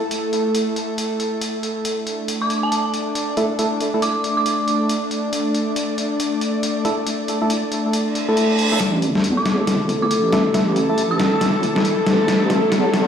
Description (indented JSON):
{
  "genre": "deep dubstep",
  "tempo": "138 BPM",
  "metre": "4/4",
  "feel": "swing 61% on 16ths, half-time",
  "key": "unclear",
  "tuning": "A4 = 440 Hz",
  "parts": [
    { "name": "bowed-like drone", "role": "sustained chords", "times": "0.0-13.1 s", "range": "A3 to D5", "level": "-22 LUFS", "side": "equal", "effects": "built-in reverb" },
    { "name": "trip hop sampler-style drum kit", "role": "drums", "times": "0.1-13.0 s", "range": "hi-hat, snare drum", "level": "-23 LUFS", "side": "left 1 dB", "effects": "none" },
    { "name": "dark detuned synth bell", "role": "melody", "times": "2.4-4.8, 9.4-11.5 s", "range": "A5 to E6", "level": "-26 LUFS", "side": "right 2 dB", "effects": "chorus, low-pass filter, dub echo" },
    { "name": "percussive organ stab", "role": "stabs", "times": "3.4-4.0, 6.8-11.0 s", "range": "A3 to A4", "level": "-24 LUFS", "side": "equal", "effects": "chorus, vintage 12-bit sampler grit, dub echo" },
    { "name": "reverse cymbal and riser", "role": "sound effects", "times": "8.1-13.1 s", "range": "none", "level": "-27 LUFS", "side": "right 3 dB", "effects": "none" },
    { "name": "deep soft wobble bass", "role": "bass", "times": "8.8-13.1 s", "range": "G1 to E2", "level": "-22 LUFS", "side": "equal", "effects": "chorus, high-pass filter" },
    { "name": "backwards swelling texture", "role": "texture", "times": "9.4-13.1 s", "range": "A4", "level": "-25 LUFS", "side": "left 1 dB", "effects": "built-in reverb" }
  ],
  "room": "moderate digital room reverb, RT60 0.9 s, digital ambience",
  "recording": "played on a big sound system in a bare room, large studio reverb, high-pass filter",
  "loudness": "-17 LUFS",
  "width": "side -8 dB against mid",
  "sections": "0.0-8.8 A section; 8.8-13.1 B section",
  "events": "reverse cymbal 8.1-8.8; build-up 8.8-13.1; drum fill 8.8-13.1; filter sweep on synth stab 8.8-13.1; filter sweep on synth bell 8.8-13.1",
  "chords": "0.0 A5"
}